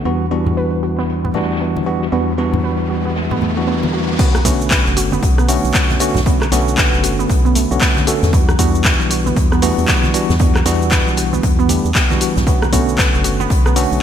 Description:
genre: deep house.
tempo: 116 BPM.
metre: 4/4.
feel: swing 60% on 16ths.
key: B minor.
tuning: A4 = 442 Hz.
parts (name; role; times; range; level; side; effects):
barky tine electric piano; stabs; 0.0-14.0 s; D3 to A4; -19 LUFS; left 1 dB; medium stereo tremolo, sidechain pumping, ping-pong delay.
organ-like FM bass; bass; 0.0-14.0 s; F#1 to E2; -21 LUFS; equal; sidechain pumping.
warbly dusty pluck; arpeggios; 0.1-13.8 s; A3 to B4; -22 LUFS; right 4 dB; chorus, sidechain pumping, ping-pong delay.
swinging big-band drum kit; drums; 0.1-13.9 s; hi-hat, snare drum; -29 LUFS; left 2 dB; sidechain pumping on hats, high-pass filter on hats, low-pass filter on hats, high-pass filter on snare, low-pass filter on snare, high-pass filter on room, low-pass filter on room, gated reverb.
riser; sound effects; 1.8-4.2 s; none; -27 LUFS; equal; none.
congas; percussion; 0.5-13.5 s; none; -25 LUFS; equal; none.
electronic kick drum; drums; 4.2-13.6 s; none; -16 LUFS; equal; none.
punchy analog drum machine; drums; 4.2-14.0 s; crash cymbal, handclaps, hi-hat, rim click, shaker; -20 LUFS; equal; low-pass filter on cymbals, low-pass filter on perc, low-pass filter on snare, low-pass filter on hats, low-pass filter on room, gated reverb.
room: light reverb, digital ambience.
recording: bright 1980s-style digital production.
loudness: -13 LUFS.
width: side -9 dB against mid.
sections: 0.0-4.2 A section; 4.2-14.0 B section.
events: riser 1.8-4.2; drop 4.2-14.0.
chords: 0.1 Em9; 4.2 Bm9; 8.3 Em9; 12.5 Bm9.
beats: | 0.05 0.57 1.09 1.61 | 2.12 2.64 3.16 3.67 | 4.19 4.71 5.23 5.74 | 6.26 6.78 7.29 7.81 | 8.33 8.85 9.36 9.88 | 10.40 10.92 11.43 11.95 | 12.47 12.98 13.50 14.02.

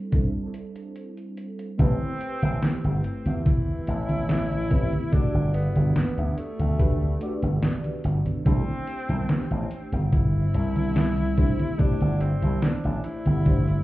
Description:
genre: vaporwave.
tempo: 72 BPM.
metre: 4/4.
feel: straight.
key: C lydian.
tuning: A4 = 441 Hz.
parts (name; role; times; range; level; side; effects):
mellow FM electric piano; accompaniment; 0.0-13.8 s; G3 to D5; -33 LUFS; equal; ensemble chorus, analog delay.
detuned 8-bit digital drum machine; drums; 0.1-13.8 s; congas, hi-hat, snare drum; -27 LUFS; right 1 dB; low-pass filter on hats, studio reverb, low-pass filter on perc, low-pass filter on snare.
electronic kick drum; drums; 0.1-13.6 s; none; -22 LUFS; equal; studio reverb.
clear tenor saxophone; melody; 1.8-13.8 s; A3 to E4; -33 LUFS; left 1 dB; tape echo.
slap bass with an envelope filter; bass; 1.8-13.8 s; G1 to E2; -24 LUFS; equal; tube saturation.
room: little or no reverb.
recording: heard muffled through a wall, club reverb, cassette tape, EQ.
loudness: -22 LUFS.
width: side -17 dB against mid.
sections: 0.0-1.8 A section; 1.8-13.8 B section.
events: filter sweep 0.0-1.8.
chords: 0.0 C69; 1.8 Am9; 5.1 Gmaj9; 8.5 C69.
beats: 0.13 0.96 | 1.79 2.63 3.46 4.29 | 5.13 5.96 6.79 7.63 | 8.46 9.29 10.13 10.96 | 11.79 12.63 13.46.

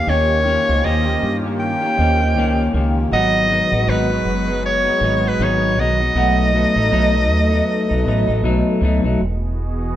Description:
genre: indie pop, bedroom pop.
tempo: 79 BPM.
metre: 4/4.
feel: swing 60% on 16ths.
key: unclear.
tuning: A4 = 441 Hz.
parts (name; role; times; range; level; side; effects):
bright soprano saxophone; melody; 0.0-8.4 s; B4 to G5; -19 LUFS; equal; none.
clean electric guitar; accompaniment; 0.0-9.2 s; G#2 to G4; -20 LUFS; left 2 dB; warbly pitch drift.
lush unison pad; sustained chords; 0.0-10.0 s; D#3 to D#5; -25 LUFS; equal; chorus, phaser.
vibraphone with soft mallets; second line; 0.1-8.6 s; B4 to G5; -26 LUFS; right 6 dB; none.
deep dub fingered electric bass; bass; 0.1-10.0 s; E1 to G2; -20 LUFS; equal; none.
room: moderate large studio reverb, RT60 1.1 s.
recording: band playing live in one room.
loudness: -15 LUFS.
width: side -12 dB against mid.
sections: 0.0-9.2 A section.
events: none.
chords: 0.0 D#7; 3.1 G#m7; 6.2 B7; 9.2 Emaj7.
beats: | 0.08 0.84 1.60 2.36 | 3.12 3.88 4.64 5.40 | 6.16 6.92 7.68 8.44 | 9.20 9.96.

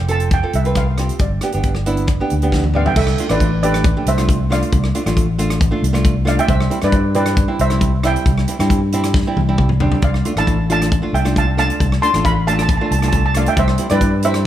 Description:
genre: calypso.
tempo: 136 BPM.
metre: 4/4.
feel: straight.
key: unclear.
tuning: A4 = 440 Hz.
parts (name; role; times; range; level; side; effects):
steel pan; melody; 0.0-14.5 s; A4 to C6; -20 LUFS; right 2 dB; tape echo.
fingered electric bass; bass; 0.0-14.5 s; F1 to G2; -18 LUFS; left 1 dB; none.
nylon-string guitar; accompaniment; 0.1-14.4 s; G3 to B4; -22 LUFS; right 2 dB; none.
modern studio drum kit; drums; 0.1-14.4 s; crash cymbal, hi-hat, kick drum, rim click, snare drum, toms; -19 LUFS; left 1 dB; none.
room: light reverb.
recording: none.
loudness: -14 LUFS.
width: side -12 dB against mid.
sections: 0.0-3.0 A section; 3.0-14.5 B section.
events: drum fill 2.5-3.0, 9.1-10.0.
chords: 0.0 Fadd9; 1.2 G; 3.0 Dm; 6.5 C; 10.0 Dm; 13.6 C.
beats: 0.32 0.76 | 1.20 1.64 2.08 2.52 | 2.97 3.41 3.85 4.29 | 4.73 5.17 5.61 6.05 | 6.49 6.93 7.38 7.82 | 8.26 8.70 9.14 9.59 | 10.03 10.47 10.92 11.36 | 11.80 12.25 12.69 13.13 | 13.58 14.02 14.46.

